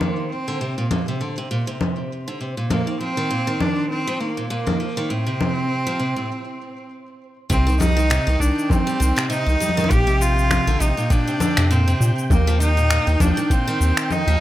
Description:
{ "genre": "folktronica", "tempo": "100 BPM", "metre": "4/4", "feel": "swing 56% on 16ths", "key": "C minor", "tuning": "A4 = 440 Hz", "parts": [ { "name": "bright cello", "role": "melody", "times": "0.0-14.4 s", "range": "Bb3 to G4", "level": "-24 LUFS", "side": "equal", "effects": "none" }, { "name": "picked steel-string acoustic guitar", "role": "arpeggios", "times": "0.0-14.4 s", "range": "A2 to G3", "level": "-25 LUFS", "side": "equal", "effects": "none" }, { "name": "electronic congas, shaker and finger snaps", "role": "drums", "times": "0.0-14.4 s", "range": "none", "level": "-24 LUFS", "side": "left 1 dB", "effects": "overdrive" }, { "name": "flickering grainy texture", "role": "texture", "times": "0.0-14.4 s", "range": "C5 to G6", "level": "-34 LUFS", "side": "right 1 dB", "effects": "built-in reverb" }, { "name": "round analog bass", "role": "bass", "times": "7.5-14.4 s", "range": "Bb1 to Bb2", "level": "-18 LUFS", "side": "equal", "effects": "none" }, { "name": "electronic kick drum", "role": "drums", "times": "7.5-13.6 s", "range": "none", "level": "-19 LUFS", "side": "equal", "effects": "overdrive" } ], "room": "light reverb", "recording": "none", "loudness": "-18 LUFS", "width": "side -14 dB against mid", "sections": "0.0-7.5 A section; 7.5-14.4 B section", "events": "filter sweep on drum 0.0-7.5; break 6.3-7.5", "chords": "0.3 Bbadd9; 2.7 Ebsus2; 5.1 N.C.; 7.5 Cm; 9.9 Bbadd9; 12.3 Ebsus2", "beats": "| 0.30 0.90 1.50 2.10 | 2.70 3.30 3.90 4.50 | 5.10 5.70 6.30 6.90 | 7.50 8.10 8.70 9.30 | 9.90 10.50 11.10 11.70 | 12.30 12.90 13.50 14.10" }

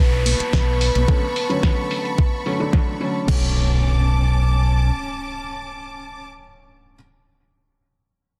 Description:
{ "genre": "nu-disco, nu disco", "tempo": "109 BPM", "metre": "4/4", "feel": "straight", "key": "B minor", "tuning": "A4 = 439 Hz", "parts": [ { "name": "soft octave-layered synth lead", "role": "melody", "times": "0.0-2.7 s", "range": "B4", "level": "-29 LUFS", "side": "equal", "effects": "chorus, cassette tape, dub echo" }, { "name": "dark baby grand piano", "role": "accompaniment", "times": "0.0-7.0 s", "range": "D3 to E4", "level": "-30 LUFS", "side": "equal", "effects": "sidechain pumping, dub echo" }, { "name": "rich symphonic string section", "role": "sustained chords", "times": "0.0-6.2 s", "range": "C#4 to D6", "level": "-31 LUFS", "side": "equal", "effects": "sidechain pumping" }, { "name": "fingered electric bass with an envelope filter", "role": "bass", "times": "0.0-4.9 s", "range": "B1", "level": "-20 LUFS", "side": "equal", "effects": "none" }, { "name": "downlifter and impact", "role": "sound effects", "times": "0.0-7.0 s", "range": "none", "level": "-36 LUFS", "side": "equal", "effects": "none" }, { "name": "pop drum kit", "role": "drums", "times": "0.3-3.4 s", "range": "crash cymbal, hi-hat, snare drum", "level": "-29 LUFS", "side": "equal", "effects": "low-pass filter on hats, low-pass filter on perc, low-pass filter on snare, low-pass filter on cymbals" }, { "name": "congas", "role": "percussion", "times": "0.3-1.1 s", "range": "none", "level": "-35 LUFS", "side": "equal", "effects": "none" }, { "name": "electronic kick drum", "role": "drums", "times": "0.5-3.4 s", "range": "none", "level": "-20 LUFS", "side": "equal", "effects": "overdrive" } ], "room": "light reverb", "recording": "dense, heavily limited modern master", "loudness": "-20 LUFS", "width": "mono", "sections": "0.0-3.3 A section; 3.3-5.5 B section", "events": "filter sweep on drum 0.0-3.3", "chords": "0.0 Bm9", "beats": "0.53 | 1.08 1.63 2.18 2.73 | 3.29 3.83 4.38 4.94" }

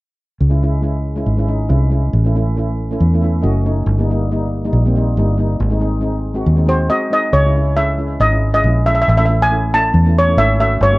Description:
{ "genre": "calypso", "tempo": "138 BPM", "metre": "4/4", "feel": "straight", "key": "C# harmonic minor", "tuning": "A4 = 445 Hz", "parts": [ { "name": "fingered electric bass", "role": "bass", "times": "0.4-11.0 s", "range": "F#1 to E2", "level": "-15 LUFS", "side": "equal", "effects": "none" }, { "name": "steel pan", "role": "accompaniment", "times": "0.5-11.0 s", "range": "G3 to E5", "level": "-21 LUFS", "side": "equal", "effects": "none" }, { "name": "steel pan", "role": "melody", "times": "6.7-11.0 s", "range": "B#4 to A5", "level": "-15 LUFS", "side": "equal", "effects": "none" } ], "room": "little or no reverb", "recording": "recorded outdoors, with no room sound", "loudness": "-13 LUFS", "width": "side -21 dB against mid", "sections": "0.4-7.3 A section; 7.3-11.0 B section", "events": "steel pan fill 3.0-3.9", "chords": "0.4 C#m; 2.1 A; 3.9 D#/G; 5.6 G#; 7.3 C#m; 9.1 A", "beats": "| 0.40 0.83 1.27 1.70 | 2.14 2.57 3.00 3.44 | 3.87 4.31 4.74 5.17 | 5.61 6.04 6.48 6.91 | 7.34 7.78 8.21 8.64 | 9.08 9.51 9.94 10.38 | 10.81" }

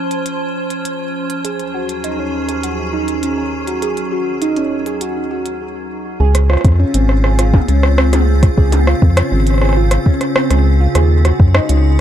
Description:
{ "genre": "IDM", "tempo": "101 BPM", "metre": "4/4", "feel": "straight", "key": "Db major", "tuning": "A4 = 440 Hz", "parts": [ { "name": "icy glass pad", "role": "sustained chords", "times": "0.0-12.0 s", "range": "Eb2 to C5", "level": "-21 LUFS", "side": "equal", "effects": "chorus, built-in reverb" }, { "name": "glitchy drum kit", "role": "drums", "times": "0.1-11.8 s", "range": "hi-hat, rim click, toms", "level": "-20 LUFS", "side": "equal", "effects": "overdrive" }, { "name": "harp-like synth pluck", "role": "arpeggios", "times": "1.4-11.8 s", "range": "C4 to Ab4", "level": "-20 LUFS", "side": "right 2 dB", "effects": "chorus, phaser, digital delay" }, { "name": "rubbery square bass", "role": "bass", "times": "6.2-12.0 s", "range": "Ab1 to Gb2", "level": "-12 LUFS", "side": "equal", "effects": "tube saturation" }, { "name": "electronic kick drum", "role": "drums", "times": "6.6-11.5 s", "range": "none", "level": "-11 LUFS", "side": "equal", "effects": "none" } ], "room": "digital ambience", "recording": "none", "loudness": "-12 LUFS", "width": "side -10 dB against mid", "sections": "0.0-6.2 A section; 6.2-12.0 B section", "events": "stop 5.6-6.2", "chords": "0.0 Dbmaj7; 1.4 Ab7sus4/Eb; 6.2 Dbmaj7; 11.0 Ab7sus4", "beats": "0.26 0.85 | 1.45 2.04 2.63 3.23 | 3.82 4.42 5.01 5.61 | 6.20 6.79 7.39 7.98 | 8.58 9.17 9.76 10.36 | 10.95 11.55" }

